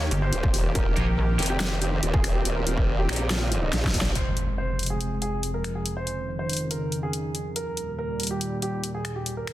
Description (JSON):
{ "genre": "heavy wobble dubstep", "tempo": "141 BPM", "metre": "4/4", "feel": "half-time", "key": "unclear", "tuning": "A4 = 438 Hz", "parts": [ { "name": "warm grand piano", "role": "melody", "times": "0.0-9.5 s", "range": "Eb4 to Db5", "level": "-33 LUFS", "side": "right 1 dB", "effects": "digital delay" }, { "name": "supersaw pad", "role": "sustained chords", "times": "0.0-9.5 s", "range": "C2 to G4", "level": "-31 LUFS", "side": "equal", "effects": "sidechain pumping, low-pass filter" }, { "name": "formant-sweep wobble bass", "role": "bass", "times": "0.0-4.1 s", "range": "Eb1 to Bb1", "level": "-26 LUFS", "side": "equal", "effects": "chorus, overdrive" }, { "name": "pulsing pluck wobble bass", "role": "bass", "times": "0.1-1.4 s", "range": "G1 to Bb1", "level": "-22 LUFS", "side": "equal", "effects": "chorus, overdrive" }, { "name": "dubstep drum kit", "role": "drums", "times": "0.1-9.5 s", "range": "finger snaps, hi-hat, snare drum", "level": "-30 LUFS", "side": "left 1 dB", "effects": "none" }, { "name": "electronic kick drum", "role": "drums", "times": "0.4-4.0 s", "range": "none", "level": "-24 LUFS", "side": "equal", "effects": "distortion" }, { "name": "tight distorted guitar", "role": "stabs", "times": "1.0-3.2 s", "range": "Bb3 to G4", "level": "-37 LUFS", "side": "right 2 dB", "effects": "distortion, digital delay" }, { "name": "impact", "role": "sound effects", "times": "4.2-5.9 s", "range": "none", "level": "-31 LUFS", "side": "equal", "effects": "none" } ], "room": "light reverb", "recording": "dense, heavily limited modern master", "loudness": "-24 LUFS", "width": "side -14 dB against mid", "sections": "0.0-4.2 A section; 4.2-9.5 B section", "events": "drop 0.0-4.2; drum fill 3.7-4.2; band accent 4.0; impact 4.2-5.9; filter sweep on supersaw synth 4.2-9.5", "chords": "0.0 Eb; 4.2 Fm; 5.9 Dbadd9/F; 7.6 Eb", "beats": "0.33 | 0.75 1.18 1.60 2.03 | 2.45 2.88 3.31 3.73 | 4.16 4.58 5.01 5.43 | 5.86 6.28 6.71 7.13 | 7.56 7.99 8.41 8.84 | 9.26" }